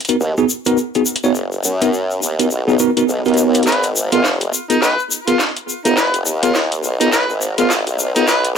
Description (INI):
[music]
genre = glitch hop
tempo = 104 BPM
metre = 4/4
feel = swing 59% on 16ths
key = G# dorian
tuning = A4 = 444 Hz
[part]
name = drum and bass drum kit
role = drums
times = 0.0-8.5 s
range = hi-hat, snare drum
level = -20 LUFS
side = equal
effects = high-pass filter on hats, high-pass filter on snare, high-pass filter on room
[part]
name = bell-like tine electric piano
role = stabs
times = 0.1-8.2 s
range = B3 to C#5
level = -17 LUFS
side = right 1 dB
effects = medium stereo tremolo, low-pass filter, digital delay
[part]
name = egg shaker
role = percussion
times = 0.1-8.5 s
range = none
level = -23 LUFS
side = left 4 dB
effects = none
[part]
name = formant-sweep wobble bass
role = bass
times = 0.2-8.6 s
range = E#1 to F#2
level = -19 LUFS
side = equal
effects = chorus, tube saturation, high-pass filter
[part]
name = overdriven harmonica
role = melody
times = 3.7-8.5 s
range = D#4 to B4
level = -20 LUFS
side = left 1 dB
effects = digital delay
[sound]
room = moderate studio reverb, RT60 0.6 s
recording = high-pass filter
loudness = -14 LUFS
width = side -7 dB against mid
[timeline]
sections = 0.0-8.6 A section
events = build-up 0.0-8.6; drum fill 3.7-8.6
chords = 0.0 Bmaj7; 3.7 G#m69